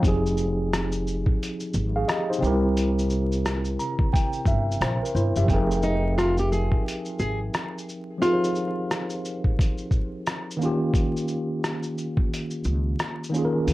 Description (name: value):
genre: lo-fi hip hop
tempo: 88 BPM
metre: 4/4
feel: swing 63% on 16ths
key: F minor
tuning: A4 = 445 Hz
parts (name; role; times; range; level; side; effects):
- tine electric piano; accompaniment; 0.0-13.7 s; C3 to Bb5; -26 LUFS; equal; medium stereo tremolo, cassette tape, low-pass filter
- upright bass; bass; 0.0-7.5, 12.7-13.7 s; F1 to Eb2; -25 LUFS; equal; none
- lo-fi sampler-style drum kit; drums; 0.0-13.7 s; hi-hat, kick drum, rim click, shaker; -26 LUFS; equal; none
- nylon-string guitar; melody; 5.8-10.9 s; Eb4 to Ab4; -26 LUFS; equal; low-pass filter, analog delay
room: little or no reverb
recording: dry, gritty hardware recording, vinyl crackle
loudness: -22 LUFS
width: side -18 dB against mid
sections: 0.0-5.5 A section; 5.5-13.7 B section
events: tine electric piano fill 3.4-5.5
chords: 0.0 Fm7; 2.4 C7; 5.5 Fm11; 10.6 Eb9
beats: | 0.03 0.71 1.39 2.07 | 2.75 3.44 4.12 4.80 | 5.48 6.16 6.85 7.53 | 8.21 8.89 9.57 10.26 | 10.94 11.62 12.30 12.98 | 13.66